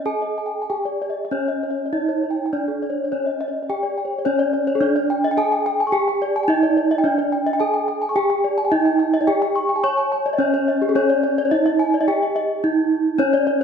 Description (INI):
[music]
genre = gamelan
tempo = 107 BPM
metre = 4/4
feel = straight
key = C# pelog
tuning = A4 = 435 Hz
[part]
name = gamelan-type bronze metallophone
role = melody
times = 0.0-13.6 s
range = C#4 to C#5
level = -20 LUFS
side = right 2 dB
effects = none
[part]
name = gamelan-type bronze metallophone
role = arpeggios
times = 0.0-13.6 s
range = G#4-45c to C#6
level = -21 LUFS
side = left 2 dB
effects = none
[sound]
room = wet recital hall reverb, RT60 1.7 s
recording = none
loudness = -18 LUFS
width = side -7 dB against mid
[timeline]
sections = 0.0-4.3 A section; 4.3-13.6 B section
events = break 12.4-13.2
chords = none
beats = 0.05 0.69 1.31 | 1.93 2.52 3.11 3.69 | 4.25 4.81 5.37 5.93 | 6.49 7.04 7.60 8.16 | 8.72 9.28 9.84 10.40 | 10.96 11.52 12.07 12.63 | 13.19